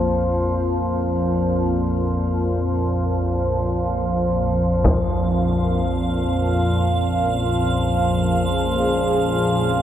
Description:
dark ambient drone; free time; Bb minor; A4 = 440 Hz
deep dark ambient pad; sustained chords; 0.0-9.8 s; Bb2 to Eb5; -27 LUFS; equal; chorus, built-in reverb, shimmer reverb
organ-like drone; drone; 0.0-9.8 s; Bb1 to F2; -19 LUFS; equal; ensemble chorus, built-in reverb
taiko ensemble; percussion; 4.8-5.1 s; -24 LUFS; equal; low-pass filter on perc
icy glass pad; texture; 5.4-9.8 s; F5; -25 LUFS; right 4 dB; chorus, built-in reverb, shimmer reverb
wet huge ambient reverb, RT60 7.0 s; -18 LUFS; side -10 dB against mid
0.0-9.8 A section
0.0 Bb5; 4.9 Dbadd9/Bb

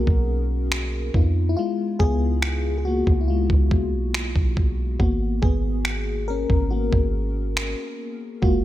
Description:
contemporary R&B; 70 BPM; 4/4; straight; G# dorian; A4 = 439 Hz
FM electric piano with soft pad layer; accompaniment; 0.0-8.6 s; G#3 to A#4; -25 LUFS; left 3 dB; chorus, tremolo
warm 808-style bass; bass; 0.0-8.6 s; F#1 to E#2; -23 LUFS; equal
dusty soul sampler-style drum kit; drums; 0.1-8.6 s; finger snaps, kick drum; -22 LUFS; equal
little or no reverb; -20 LUFS; side -14 dB against mid
0.0-8.6 A section
break 0.0-5.0; FM electric piano solo 0.0-8.6
0.0 Bmaj9; 1.1 C#9; 5.0 G#m9

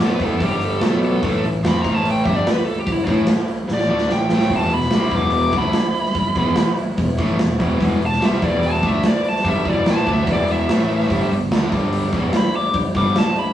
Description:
classic rock; 146 BPM; 4/4; straight; E minor; A4 = 441 Hz
crunchy overdriven guitar; riff; 0.0-13.2 s; E2 to F4; -23 LUFS; left 1 dB
raw garage guitar; riff; 0.0-13.2 s; E2 to F4; -26 LUFS; equal; overdrive
fuzz picked electric bass; bass; 0.0-13.1 s; E1 to F2; -25 LUFS; equal; overdrive
smooth overdriven lead guitar; melody; 0.1-13.5 s; E4 to D6; -22 LUFS; left 1 dB
big rock drum kit; drums; 0.2-13.5 s; hi-hat, kick drum, snare drum; -20 LUFS; equal
picked twelve-string acoustic guitar; accompaniment; 4.5-13.5 s; E2 to D5; -28 LUFS; right 1 dB
moderate stone room reverb, RT60 1.1 s; rough rehearsal-room recording, tube saturation, small room ambience; -16 LUFS; side -11 dB against mid
0.0-13.5 A section
lead electric guitar solo 0.0-13.5; drum fill 3.7-4.5
0.0 G5; 0.8 B5; 1.2 A5; 4.5 Em; 10.7 A5; 11.1 G5

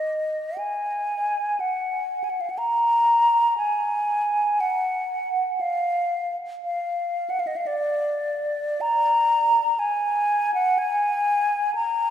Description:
classical, free, expressive piece for unaccompanied flute; 49-65 BPM; 4/4; rubato; A4 = 438 Hz
mellow hollow silver concert flute; solo; 0.0-12.1 s; D5 to Bb5; -21 LUFS; equal
wet church reverb, RT60 3.4 s; heard from further back in the room; -21 LUFS; side -10 dB against mid
0.0-12.1 A section

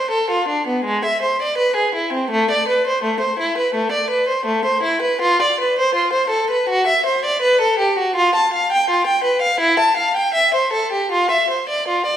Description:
classical, baroque-style suite movement for unaccompanied violin; 82 BPM; 4/4; rubato; A minor; A4 = 443 Hz
rich violin; solo; 0.0-12.2 s; G#3 to A5; -16 LUFS; equal
wet recital hall reverb, RT60 1.2 s; recorded in a church or concert hall; -15 LUFS; side -10 dB against mid
0.0-12.2 A section

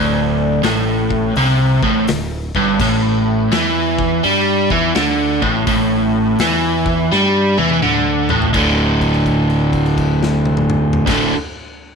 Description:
blues rock power trio and southern rock; 84 BPM; 4/4; swing 66% on 8ths; A4 = 440 Hz
biting overdriven guitar; riff; 0.0-11.4 s; D2 to G3; -14 LUFS; equal
growling fingered electric bass; bass; 0.0-11.3 s; D1 to G2; -23 LUFS; equal; overdrive
big rock drum kit; drums; 0.6-11.2 s; crash cymbal, hi-hat, kick drum, snare drum, toms; -24 LUFS; left 3 dB
light reverb, small room ambience; 1960s-style stereo; -13 LUFS; side -5 dB against mid
0.0-8.5 A section; 8.5-11.4 B section
drum fill 7.1-8.5; held note 8.5-11.0
0.0 D5; 2.8 A5; 8.5 D5

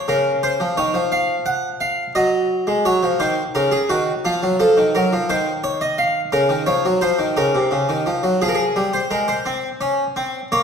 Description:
classical, baroque-style two-part invention for harpsichord; 58 BPM (dotted quarters); 12/8; straight; Bb minor; A4 = 440 Hz
harpsichord; solo; 0.0-10.6 s; C3 to Gb5; -17 LUFS; equal
wet recital hall reverb, RT60 1.4 s; recorded in a church or concert hall; -17 LUFS; side -6 dB against mid
0.0-10.6 A section
0.1 Bbm/Db (rootless); 2.2 Ebm; 4.2 F7(no3); 6.3 Bbm/Db; 8.4 Fm (rootless)

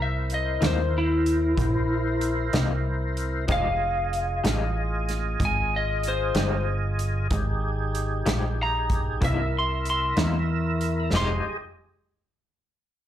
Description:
slow blues; 63 BPM (dotted quarters); 12/8; straight; F minor; A4 = 440 Hz
lightly driven lead guitar; melody; 0.0-11.4 s; E4 to C6; -27 LUFS; left 1 dB; slapback echo
tonewheel organ; sustained chords; 0.0-11.6 s; Eb4 to E5; -31 LUFS; right 1 dB; overdrive, chorus vibrato, slow rotary speaker
plucky analog bass; bass; 0.0-11.4 s; F1 to E2; -26 LUFS; equal
natural country drum kit; drums; 0.3-11.3 s; crash cymbal, hi-hat, kick drum, snare drum; -29 LUFS; right 1 dB
electric guitar through a small old amp; accompaniment; 0.6-11.4 s; C3 to G4; -32 LUFS; left 5 dB; tremolo, slapback echo
little or no reverb; live gig heard through the venue's PA, club reverb; -23 LUFS; side -11 dB against mid
0.0-11.1 A section; 11.1-13.1 B section
lead electric guitar solo 0.0-11.1
0.0 C7#9; 3.5 Fm9; 9.2 C7#9; 11.1 Fm9

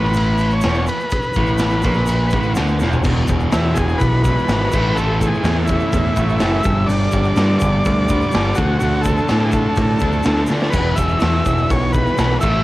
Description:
garage rock duo or trio; 125 BPM; 4/4; straight; A4 = 438 Hz
overdriven combo organ; melody; 0.0-12.6 s; E4 to E5; -22 LUFS; equal
fuzz guitar; riff; 0.0-12.6 s; E2 to D4; -20 LUFS; equal; distortion, cassette tape
growling picked electric bass; bass; 0.0-12.6 s; E1 to D3; -19 LUFS; equal; overdrive
raw garage drum kit; drums; 0.0-12.5 s; crash cymbal, hi-hat, kick drum, ride cymbal, snare drum, toms; -21 LUFS; equal; cassette tape
egg shaker; percussion; 0.1-12.5 s; -40 LUFS; left 3 dB
small room ambience; home recording on cassette; -14 LUFS; side -17 dB against mid
0.0-3.0 A section; 3.0-12.6 B section
drum fill 2.8, 10.5
0.0 E5; 3.0 E; 4.7 A5; 6.7 G5; 8.6 D5; 10.7 E5

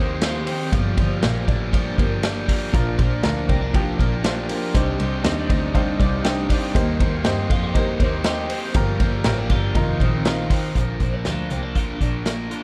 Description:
jangly indie pop; 120 BPM; 4/4; straight; Bb major; A4 = 441 Hz
raw garage guitar; accompaniment; 0.0-12.6 s; Bb2 to D5; -31 LUFS; equal; overdrive
twelve-string electric guitar; arpeggios; 0.0-12.6 s; Eb3 to G4; -30 LUFS; equal; phaser
bright double bass; bass; 0.0-12.4 s; F1 to G2; -27 LUFS; equal
vintage drum kit; drums; 0.2-12.6 s; hi-hat, kick drum, ride cymbal, snare drum; -25 LUFS; equal
bright upright piano; accompaniment; 2.7-10.8 s; D4 to G5; -30 LUFS; equal
small room ambience; dark, warm production; -21 LUFS; mono
0.0-10.8 A section; 10.8-12.6 B section
upright piano fill 5.2-6.7
0.0 Eb6; 0.7 Gm7; 2.7 Bb; 4.7 Cmadd9; 6.7 Eb6; 8.7 Gm7; 9.8 F7sus4; 10.8 Bb

